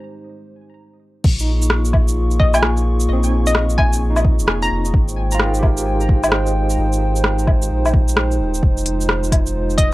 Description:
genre	future garage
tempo	130 BPM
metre	4/4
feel	swing 64% on 16ths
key	unclear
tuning	A4 = 440 Hz
part	dark analog pad	sustained chords	0.0-9.9 s	Ab3 to Db6	-24 LUFS	equal	chorus, sidechain pumping
part	warm sub bass	bass	1.2-9.9 s	Eb1 to Bb1	-19 LUFS	equal	sidechain pumping
part	electronic kick drum	drums	1.2-9.9 s	none	-16 LUFS	equal	none
part	organic electronic drum kit	drums	1.2-9.9 s	crash cymbal, hi-hat, rim click, shaker, woodblock	-20 LUFS	equal	none
part	barky tine electric piano	accompaniment	1.4-8.6 s	C4 to Eb5	-28 LUFS	right 3 dB	fast tremolo, sidechain pumping, tape echo
part	hollow square pluck	melody	2.4-4.9, 9.8-9.9 s	Eb5 to Bb5	-23 LUFS	left 1 dB	chorus, vintage 12-bit sampler grit, tape echo
room	digital ambience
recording	dry, gritty hardware recording, cassette tape, low-pass filter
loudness	-14 LUFS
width	side -18 dB against mid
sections	0.0-1.2 A section; 1.2-9.9 B section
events	filter sweep 0.0-1.2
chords	0.0 Abmaj7; 1.2 Bbm7; 4.9 Abmaj7; 8.6 Fm7

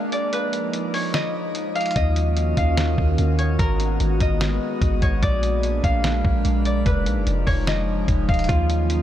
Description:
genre	hip hop, atmospheric cloud-rap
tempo	147 BPM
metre	4/4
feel	half-time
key	Eb minor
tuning	A4 = 437 Hz
part	Celtic harp	melody	0.0-9.0 s	Bb4 to F5	-26 LUFS	left 1 dB	low-pass filter, tape echo
part	warbly tape-like pad	sustained chords	0.0-9.0 s	Eb3 to Gb4	-26 LUFS	equal	chorus, built-in reverb, sidechain pumping
part	lo-fi sampler-style drum kit	drums	0.1-9.0 s	hi-hat, kick drum, snare drum	-24 LUFS	equal	none
part	soft 808-style bass	bass	2.0-9.0 s	Eb1 to Eb2	-22 LUFS	equal	none
part	electric guitar through a small old amp	arpeggios	8.5-9.0 s	F4	-28 LUFS	right 5 dB	low-pass filter
room	light reverb, digital ambience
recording	none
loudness	-19 LUFS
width	side -11 dB against mid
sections	0.0-8.5 A section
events	break 0.0-2.0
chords	0.3 Fm7b5; 2.0 Ebm9; 3.6 Abm9; 5.2 Bb7; 6.9 Fm7b5; 8.5 Ebm9

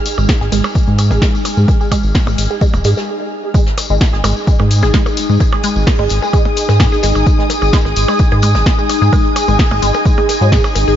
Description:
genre	minimal techno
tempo	129 BPM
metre	4/4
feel	straight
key	unclear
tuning	A4 = 436 Hz
part	ethereal airy pad	texture	0.0-11.0 s	D#4 to E#6	-19 LUFS	left 1 dB	ensemble chorus, built-in reverb, phaser, sidechain pumping
part	punchy analog drum machine	drums	0.1-10.9 s	hi-hat, snare drum	-23 LUFS	left 1 dB	none
part	soft brush drum kit	drums	0.1-10.9 s	hi-hat, snare drum	-30 LUFS	left 2 dB	none
part	tambourine	percussion	0.1-11.0 s	none	-27 LUFS	left 5 dB	none
part	resonant blip pluck	riff	0.2-10.9 s	F#3 to G#4	-20 LUFS	equal	phaser, sidechain pumping, diffuse ambient delay
part	round analog bass	bass	0.2-11.0 s	D#1 to G#2	-13 LUFS	equal	sidechain pumping
part	percussion blips	percussion	0.2-10.9 s	none	-26 LUFS	equal	tape echo
part	electronic kick drum	drums	0.3-10.6 s	none	-14 LUFS	equal	none
room	light reverb, small room reverb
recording	nothing above 7.5 kHz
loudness	-11 LUFS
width	side -10 dB against mid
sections	0.0-3.5 A section; 3.5-11.0 B section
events	stop 3.1-3.5; drop 3.5-11.0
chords	0.0 G#5

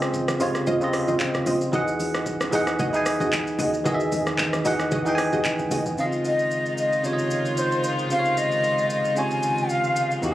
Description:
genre	amapiano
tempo	113 BPM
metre	4/4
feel	swing 55% on 16ths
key	Db major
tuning	A4 = 440 Hz
part	bell-like tine electric piano	accompaniment	0.0-10.3 s	C3 to G#5	-24 LUFS	right 1 dB	none
part	punchy chord stab	stabs	0.0-5.8 s	F4 to Eb5	-28 LUFS	equal	chorus, tape echo
part	deep log drum bass	bass	0.0-6.0 s	Bb1 to E2	-37 LUFS	equal	none
part	smooth R&B drum kit	drums	0.0-10.3 s	handclaps, hi-hat, kick drum, rim click, shaker	-29 LUFS	equal	none
part	congas	percussion	0.3-5.8, 10.2-10.3 s	none	-35 LUFS	left 1 dB	none
part	breathy hollow jazz flute	melody	6.0-10.1 s	C5 to Ab5	-23 LUFS	left 1 dB	tape echo
part	clear studio string section	sustained chords	6.0-10.3 s	Eb3 to F#4	-29 LUFS	left 1 dB	none
part	warm sub bass	bass	10.2-10.3 s	E2	-30 LUFS	equal	none
room	light reverb, digital ambience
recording	recorded on a phone in the room, club reverb, compression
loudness	-21 LUFS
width	side -14 dB against mid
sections	0.0-6.0 A section; 6.0-10.3 B section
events	drop 0.0-6.0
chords	0.0 Dbmaj9; 1.7 Emaj9; 6.0 Dbmaj9

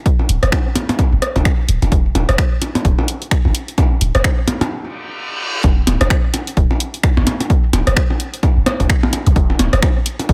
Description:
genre	minimal techno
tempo	129 BPM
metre	4/4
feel	swing 59% on 16ths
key	E minor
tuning	A4 = 440 Hz
part	electronic kick drum	drums	0.1-10.3 s	none	-18 LUFS	equal	none
part	punchy analog drum machine	drums	0.1-10.3 s	finger snaps, hi-hat	-26 LUFS	equal	none
part	electronic percussion blips and rim click	percussion	0.2-10.3 s	none	-23 LUFS	equal	tape echo
part	punchy sub bass	bass	0.3-10.3 s	D1 to B1	-18 LUFS	equal	sidechain pumping
part	reverse cymbal and zap	sound effects	4.9-5.6, 9.3-9.4 s	none	-28 LUFS	equal	none
room	little or no reverb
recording	none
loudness	-16 LUFS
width	mono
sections	0.0-5.6 A section; 5.6-10.3 B section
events	stop 4.7-5.6; reverse cymbal 4.9-5.6; drop 5.6-10.3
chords	none

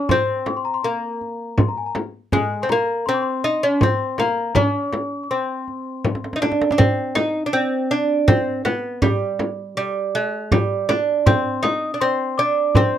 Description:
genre	Persian modal ensemble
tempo	81 BPM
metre	3/4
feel	straight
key	C dastgah shur, C avaz esfahan from 6.8 s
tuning	A4 = 440 Hz
part	lute	melody	0.0-13.0 s	G3 to Eb4	-20 LUFS	right 1 dB	none
part	celesta	second line	0.0-6.4, 11.3-13.0 s	Ab5 to Eb6	-25 LUFS	left 7 dB	none
part	frame drum	percussion	0.1-12.9 s	none	-23 LUFS	left 3 dB	none
part	tombak	percussion	0.1-12.9 s	none	-21 LUFS	right 2 dB	none
room	little or no reverb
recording	close, detailed microphones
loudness	-18 LUFS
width	side -10 dB against mid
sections	0.0-6.8 A section; 6.8-13.0 B section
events	drum fill 6.1-6.8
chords	none

